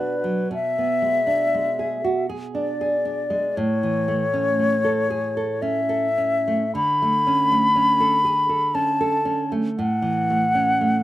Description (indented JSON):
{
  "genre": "romantic duo for flute and classical guitar",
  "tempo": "58 BPM",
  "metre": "3/4",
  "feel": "uneven beats, rubato",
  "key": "A major",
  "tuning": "A4 = 441 Hz",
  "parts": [
    { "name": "mellow silver concert flute", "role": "melody", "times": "0.0-11.0 s", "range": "B4 to B5", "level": "-20 LUFS", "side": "left 2 dB", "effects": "none" },
    { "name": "nylon-string guitar", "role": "accompaniment", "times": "0.0-11.0 s", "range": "A2 to A4", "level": "-24 LUFS", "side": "right 3 dB", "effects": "none" }
  ],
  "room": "little or no reverb",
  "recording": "recorded outdoors, with no room sound",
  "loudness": "-19 LUFS",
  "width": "side -14 dB against mid",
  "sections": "0.0-11.0 A section",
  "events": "none",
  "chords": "0.0 Bm; 0.5 G#dim/B; 3.6 A; 6.8 D5; 9.8 A",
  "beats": "| 0.53 1.55 2.55 | 3.57 4.60 5.63 | 6.75 7.76 8.76 | 9.79 10.81"
}